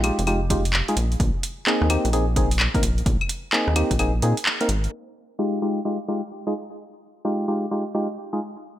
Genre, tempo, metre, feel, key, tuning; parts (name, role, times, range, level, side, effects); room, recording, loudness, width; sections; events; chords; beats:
UK garage, two-step garage; 129 BPM; 4/4; swing 64% on 16ths; F minor; A4 = 440 Hz
percussive organ stab; stabs; 0.0-8.4 s; Ab3 to Bb4; -24 LUFS; equal; chorus, digital delay
rubbery square bass; bass; 0.0-4.9 s; F1 to Bb2; -22 LUFS; equal
garage drum kit; drums; 0.0-4.9 s; claves, handclaps, hi-hat, rim click; -24 LUFS; equal; overdrive, studio reverb
electronic kick drum; drums; 0.5-4.0 s; -24 LUFS; equal; studio reverb
light reverb; low-pass filter; -20 LUFS; side -13 dB against mid
0.0-4.9 A section; 4.9-8.8 B section
filter sweep on synth stab 0.0-4.9; kick drops out 4.0-4.9; band accent 4.5; filter sweep 4.9-8.8
0.0 Fm9; 1.0 Bb9sus4; 4.9 Fm9
0.27 0.74 | 1.20 1.67 2.13 2.60 | 3.06 3.53 3.99 4.46 | 4.92 5.39 5.85 6.32 | 6.78 7.25 7.71 8.18